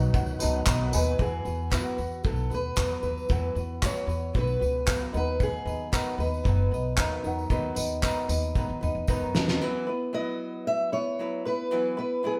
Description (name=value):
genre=acoustic pop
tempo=114 BPM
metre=4/4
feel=straight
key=E major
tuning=A4 = 444 Hz
part: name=fingerpicked steel-string acoustic guitar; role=melody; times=0.0-12.3 s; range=F#4 to E5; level=-33 LUFS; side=equal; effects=none
part: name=felt-muted upright piano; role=accompaniment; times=0.0-9.6 s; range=D#4 to B5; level=-43 LUFS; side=equal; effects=none
part: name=flamenco guitar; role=accompaniment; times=0.0-12.4 s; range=D#3 to B4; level=-34 LUFS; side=equal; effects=none
part: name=overdriven tonewheel organ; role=sustained chords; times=0.0-1.2 s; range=D#3 to F#4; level=-39 LUFS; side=equal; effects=chorus vibrato, fast rotary speaker
part: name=upright bass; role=bass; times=0.0-9.6 s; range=F#1 to D#3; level=-32 LUFS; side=equal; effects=none
part: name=tambourine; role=percussion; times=0.0-9.5 s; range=none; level=-51 LUFS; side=equal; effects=none
part: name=cloth-damped thuddy drum kit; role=drums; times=0.1-9.6 s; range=handclaps, kick drum, snare drum, tambourine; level=-30 LUFS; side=equal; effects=none
room=wet stone room reverb, RT60 1.0 s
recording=band playing live in one room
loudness=-28 LUFS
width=mono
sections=0.0-1.2 A section; 1.2-9.6 B section; 9.6-12.4 A section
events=felt piano fill 0.0-1.2, 8.8-9.6; drum fill 8.6-9.6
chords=0.0 B; 1.2 Esus2; 5.1 B; 9.6 Esus2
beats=0.15 0.67 | 1.20 1.73 2.25 2.78 | 3.31 3.83 4.36 4.88 | 5.41 5.93 6.46 6.99 | 7.51 8.04 8.56 9.09 | 9.61 10.14 10.66 11.19 | 11.71 12.23